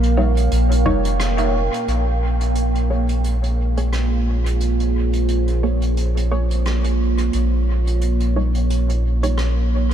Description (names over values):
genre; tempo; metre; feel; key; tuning
ambient dub; 88 BPM; 4/4; swing 56% on 16ths; Bb dorian; A4 = 443 Hz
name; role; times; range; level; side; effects
deep dark ambient pad; sustained chords; 0.0-9.9 s; Bb3 to G5; -23 LUFS; right 3 dB; chorus, built-in reverb
soft dub sub bass; bass; 0.0-9.9 s; F1 to Bb1; -18 LUFS; equal; none
vintage brush drum kit; drums; 0.0-9.9 s; hi-hat, rim click, woodblock; -32 LUFS; equal; dub echo
filtered dub chord stab; stabs; 0.2-9.4 s; G3 to Db5; -28 LUFS; equal; analog chorus, dub echo
electronic kick drum; drums; 0.9-1.0 s; none; -25 LUFS; equal; none
room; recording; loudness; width
light reverb; none; -17 LUFS; side -10 dB against mid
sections
0.0-1.9 A section; 1.9-9.9 B section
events
filter sweep on synth stab 0.0-1.9, 1.9-9.9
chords
0.0 Eb7/Bb; 1.9 Bbm7; 7.3 Eb7/Bb (rootless)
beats
0.52 1.20 | 1.88 2.56 3.25 3.93 | 4.61 5.29 5.97 6.65 | 7.34 8.02 8.70 9.38